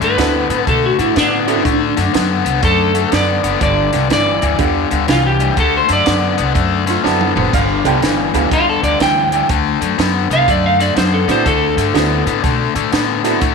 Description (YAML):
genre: electric blues shuffle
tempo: 122 BPM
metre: 4/4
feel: swing 65% on 8ths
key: D mixolydian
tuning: A4 = 442 Hz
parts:
  - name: electric slide guitar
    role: melody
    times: 0.0-12.9 s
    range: D4 to G5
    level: -17 LUFS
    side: right 2 dB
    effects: none
  - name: overdriven semi-hollow guitar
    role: riff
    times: 0.0-13.5 s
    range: G2 to B3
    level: -17 LUFS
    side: left 12 dB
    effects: none
  - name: upright bass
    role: bass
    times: 0.0-13.5 s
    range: F#1 to B2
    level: -20 LUFS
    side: right 1 dB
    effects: none
  - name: compact cocktail drum kit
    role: drums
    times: 0.0-13.5 s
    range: crash cymbal, hi-hat, kick drum, snare drum, toms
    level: -21 LUFS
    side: right 4 dB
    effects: none
  - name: tack piano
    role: accompaniment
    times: 0.2-1.6, 4.6-13.4 s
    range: B3 to B4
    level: -22 LUFS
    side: right 11 dB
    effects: none
  - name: warm upright piano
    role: second line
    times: 6.9-8.3 s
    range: F4 to G5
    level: -22 LUFS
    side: right 8 dB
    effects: tape echo
room: moderate echo chamber reverb, RT60 1.7 s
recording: 1960s-style stereo with parts hard left and right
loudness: -12 LUFS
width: side -5 dB against mid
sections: 0.0-13.5 A section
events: drum fill 7.0-7.5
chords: 0.0 D9; 3.6 G9; 5.6 D9; 7.5 G9; 9.5 D9